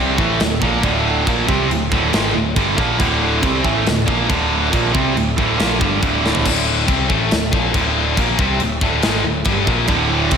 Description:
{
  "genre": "heavy metal",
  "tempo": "139 BPM",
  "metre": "4/4",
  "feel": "straight",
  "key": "D minor",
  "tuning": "A4 = 443 Hz",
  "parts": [
    { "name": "distorted electric guitar", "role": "riff", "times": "0.0-10.4 s", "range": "D2 to C4", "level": "-22 LUFS", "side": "right 2 dB", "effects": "overdrive" },
    { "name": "heavy high-gain guitar", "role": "riff", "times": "0.0-10.4 s", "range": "D2 to C4", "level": "-21 LUFS", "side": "left 9 dB", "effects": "distortion, slapback echo" },
    { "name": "heavy high-gain guitar", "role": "riff", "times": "0.0-6.4, 9.9-10.4 s", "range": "D2 to C4", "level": "-20 LUFS", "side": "right 7 dB", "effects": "distortion" },
    { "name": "overdriven picked electric bass", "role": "bass", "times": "0.0-10.4 s", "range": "D1 to C2", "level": "-23 LUFS", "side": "equal", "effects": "none" },
    { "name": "tight metal drum kit", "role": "drums", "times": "0.2-10.4 s", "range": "crash cymbal, kick drum, snare drum, toms", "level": "-20 LUFS", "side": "equal", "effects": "none" }
  ],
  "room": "moderate lush hall reverb, RT60 1.8 s",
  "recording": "big arena sound",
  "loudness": "-14 LUFS",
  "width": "side -7 dB against mid",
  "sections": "0.0-6.5 A section; 6.5-10.4 A section",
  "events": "drum fill 6.2",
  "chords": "0.0 Dm"
}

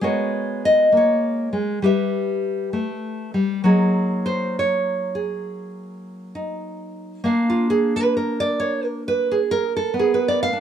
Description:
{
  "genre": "solo jazz",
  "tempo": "67 BPM",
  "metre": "4/4",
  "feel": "swing 66% on 8ths",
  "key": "unclear",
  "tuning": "A4 = 440 Hz",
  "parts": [
    { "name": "nylon-string guitar", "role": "solo", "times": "0.0-10.6 s", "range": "Gb3 to F5", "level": "-19 LUFS", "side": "equal", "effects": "slapback echo" }
  ],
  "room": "light reverb",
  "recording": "recorded outdoors, with no room sound",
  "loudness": "-18 LUFS",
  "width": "side -9 dB against mid",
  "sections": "0.0-10.6 A section",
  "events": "nylon-string guitar solo 0.0-10.6",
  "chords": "0.0 Abm11; 1.8 G69; 3.6 Gb69; 7.2 Bb"
}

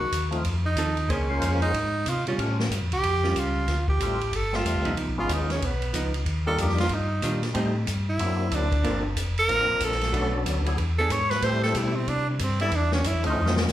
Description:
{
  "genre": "soul jazz organ trio",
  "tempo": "186 BPM",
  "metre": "4/4",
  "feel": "swing 62% on 8ths",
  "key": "unclear",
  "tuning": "A4 = 440 Hz",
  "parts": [
    { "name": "breathy tenor saxophone", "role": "melody", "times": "0.0-13.6 s", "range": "G3 to C#5", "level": "-27 LUFS", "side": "right 2 dB", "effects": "plate reverb, slapback echo" },
    { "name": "mellow tonewheel organ", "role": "bass", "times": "0.0-13.7 s", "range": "F1 to C3", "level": "-27 LUFS", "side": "equal", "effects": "slow rotary speaker" },
    { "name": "open jazz drum kit", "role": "drums", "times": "0.1-13.7 s", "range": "hi-hat, kick drum, ride cymbal, snare drum", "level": "-32 LUFS", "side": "equal", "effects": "none" },
    { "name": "percussive tonewheel organ", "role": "melody", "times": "0.3-13.7 s", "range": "F3 to E5", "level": "-31 LUFS", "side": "left 2 dB", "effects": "slow rotary speaker, overdrive, chorus vibrato, plate reverb, slapback echo" },
    { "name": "archtop guitar, miked and amplified", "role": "accompaniment", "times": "0.8-12.2 s", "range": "Eb3 to C5", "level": "-31 LUFS", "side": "right 2 dB", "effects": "plate reverb, slapback echo" }
  ],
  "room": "light reverb",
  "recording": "live gig heard through the venue's PA, club reverb",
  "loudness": "-23 LUFS",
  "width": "side -13 dB against mid",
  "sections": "0.0-3.7 A section; 3.7-13.7 A section",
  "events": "tenor saxophone solo 0.0-13.7; drum fill 13.4-13.7",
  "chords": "0.5 F7; 1.1 Bbm9; 2.4 A7alt; 3.7 Dm11; 5.0 C#9; 6.3 Ebmaj9; 7.6 Am7b5; 8.2 D7b13; 8.9 Gm11; 10.1 Bm7; 10.8 E7; 11.4 Am7; 12.7 Esus2"
}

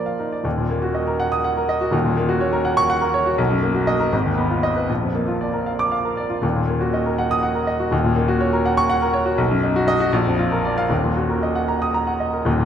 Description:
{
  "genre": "classical, virtuoso piano study",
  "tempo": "76-83 BPM (dotted quarters)",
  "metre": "6/8",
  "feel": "rubato",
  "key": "Eb minor",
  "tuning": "A4 = 440 Hz",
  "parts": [
    { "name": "clear grand piano", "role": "solo", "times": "0.0-12.7 s", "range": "Eb1 to Eb6", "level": "-18 LUFS", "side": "equal", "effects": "none" }
  ],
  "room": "wet concert hall reverb, RT60 2.5 s",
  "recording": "none",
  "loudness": "-18 LUFS",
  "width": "side -9 dB against mid",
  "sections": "0.5-12.5 A section",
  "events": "none",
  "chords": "0.5 Ebm; 1.9 Gb/Eb; 3.4 Bmaj7; 4.1 Fm7b5/Ab; 4.9 Bb; 6.4 Ebm; 7.9 Gb/Eb; 9.4 B; 10.1 Bb; 10.9 Ebm"
}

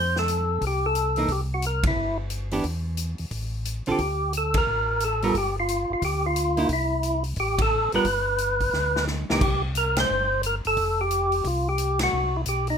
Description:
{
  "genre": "soul jazz organ trio",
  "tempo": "177 BPM",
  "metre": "4/4",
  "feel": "swing 63% on 8ths",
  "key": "C major",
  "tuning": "A4 = 438 Hz",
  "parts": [
    { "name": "percussive tonewheel organ", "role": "melody", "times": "0.0-12.8 s", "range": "Eb4 to C5", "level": "-24 LUFS", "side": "equal", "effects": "slow rotary speaker, overdrive" },
    { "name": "mellow tonewheel organ", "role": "bass", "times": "0.0-12.8 s", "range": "F1 to F2", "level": "-28 LUFS", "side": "equal", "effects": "chorus vibrato, slow rotary speaker" },
    { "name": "swinging big-band drum kit", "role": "drums", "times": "0.2-12.7 s", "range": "crash cymbal, hi-hat, kick drum, ride cymbal, snare drum", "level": "-30 LUFS", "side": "equal", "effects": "none" },
    { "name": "archtop guitar, miked and amplified", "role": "accompaniment", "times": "1.2-9.4 s", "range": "D3 to Bb4", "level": "-25 LUFS", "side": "right 3 dB", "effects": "none" }
  ],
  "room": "light reverb",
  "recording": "minimal, uncompressed stereo recording",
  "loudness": "-22 LUFS",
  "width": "side -7 dB against mid",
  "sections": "0.0-9.4 A section; 9.4-12.8 A section",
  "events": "band accent 1.8, 4.5, 7.6, 9.9, 12.0; drum fill 8.7-9.4",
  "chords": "0.0 F; 1.3 C; 2.6 N.C.; 3.3 Am7; 4.0 D5; 5.4 G7(no3); 6.7 C; 7.4 G9/A; 8.1 G; 9.4 C5; 10.8 F5; 12.1 Cm"
}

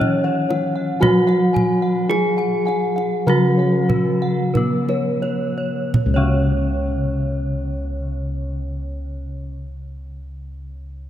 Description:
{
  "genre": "Javanese gamelan",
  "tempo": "41-62 BPM",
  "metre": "4/4",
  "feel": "straight",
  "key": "C# slendro",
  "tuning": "A4 = 437 Hz",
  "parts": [
    { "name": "gamelan-type bronze metallophone", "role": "melody", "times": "0.0-9.6 s", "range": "B3-40c to G#4+20c", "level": "-23 LUFS", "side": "right 1 dB", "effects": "none" },
    { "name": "gamelan-type bronze metallophone", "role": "accompaniment", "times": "0.0-9.6 s", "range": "C#3 to F#3-20c", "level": "-23 LUFS", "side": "left 1 dB", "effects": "none" },
    { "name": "gamelan-type bossed gongs", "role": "arpeggios", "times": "0.0-9.6 s", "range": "B4-40c to G#5+20c", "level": "-28 LUFS", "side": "left 4 dB", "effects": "none" },
    { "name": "gamelan-type bronze metallophone", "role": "arpeggios", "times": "0.0-9.5 s", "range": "B4-40c to G#5+20c", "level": "-28 LUFS", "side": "right 3 dB", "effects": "none" },
    { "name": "gamelan-type bossed gongs", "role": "bass", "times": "0.0-9.4 s", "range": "C#2 to F#4-20c", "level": "-24 LUFS", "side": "equal", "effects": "none" },
    { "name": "kendang", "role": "percussion", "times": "0.0-6.6 s", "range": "none", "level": "-24 LUFS", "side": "right 2 dB", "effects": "none" }
  ],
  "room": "wet cathedral reverb, RT60 5.5 s",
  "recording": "in a vast, echoing space",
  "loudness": "-17 LUFS",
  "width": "side -11 dB against mid",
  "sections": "0.0-5.9 A section; 5.9-11.1 B section",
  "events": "slowing down 0.0-5.9",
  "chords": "none"
}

